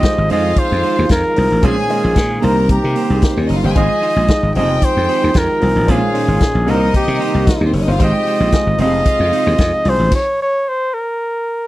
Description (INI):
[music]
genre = disco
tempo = 113 BPM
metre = 4/4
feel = straight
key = unclear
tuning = A4 = 440 Hz
[part]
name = clear flugelhorn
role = melody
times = 0.0-11.7 s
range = G4 to Eb5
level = -17 LUFS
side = equal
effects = none
[part]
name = clean electric guitar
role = accompaniment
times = 0.0-10.0 s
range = Ab3 to C5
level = -24 LUFS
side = right 7 dB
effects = spring reverb
[part]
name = warm concert grand piano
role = accompaniment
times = 0.0-10.1 s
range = Bb2 to Eb5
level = -23 LUFS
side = left 2 dB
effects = none
[part]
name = percussive tonewheel organ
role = sustained chords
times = 0.0-10.1 s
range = C3 to Eb4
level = -24 LUFS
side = right 3 dB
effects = slow rotary speaker
[part]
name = slap bass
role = bass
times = 0.0-10.1 s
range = F1 to C3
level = -17 LUFS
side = equal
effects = none
[part]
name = vintage drum kit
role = drums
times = 0.0-10.2 s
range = crash cymbal, hi-hat, kick drum, snare drum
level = -16 LUFS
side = equal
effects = none
[part]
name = rich studio violin section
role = second line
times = 0.3-9.8 s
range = Ab3 to Bb5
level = -24 LUFS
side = left 2 dB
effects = none
[sound]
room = little or no reverb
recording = dry, close 1970s-style studio recording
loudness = -12 LUFS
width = side -16 dB against mid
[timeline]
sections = 0.0-11.7 A section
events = stop 10.1-11.7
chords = 0.3 Fm7; 1.6 Bbm9; 2.4 Cm7; 3.8 Ab6; 4.5 Fm7; 5.9 Bbm9; 6.7 Cm7; 8.0 Ab6; 8.8 Fm7; 10.1 N.C.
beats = 0.04 0.57 1.10 | 1.63 2.16 2.69 3.22 | 3.75 4.28 4.82 5.34 | 5.88 6.41 6.94 7.47 | 8.00 8.53 9.06 9.59 | 10.12 10.65 11.18